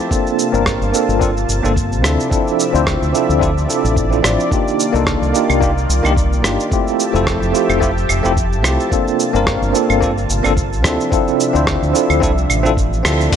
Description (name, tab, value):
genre	sunset chillout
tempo	109 BPM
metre	4/4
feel	swing 56% on 16ths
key	unclear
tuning	A4 = 439 Hz
part	bell-like tine electric piano	accompaniment	0.0-13.4 s	A3 to D5	-17 LUFS	equal	medium stereo tremolo, auto-pan, low-pass filter, tape echo
part	lush unison pad	sustained chords	0.0-13.4 s	C3 to A5	-22 LUFS	left 1 dB	chorus
part	dusty soul sampler-style drum kit	drums	0.1-13.4 s	claves, crash cymbal, hi-hat, rim click, shaker	-21 LUFS	right 1 dB	none
part	electronic kick drum	drums	0.1-13.4 s	none	-20 LUFS	equal	none
part	deep dub fingered electric bass	bass	0.5-13.3 s	F1 to D2	-18 LUFS	equal	none
room	light reverb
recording	none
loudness	-13 LUFS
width	side -8 dB against mid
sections	0.0-13.3 A section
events	filter sweep on tine electric piano 0.0-13.3; band accent 13.0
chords	0.1 Gm11; 2.0 Dm9; 4.5 Cm11; 6.7 Fmaj9; 8.9 Gm11; 10.8 Dm9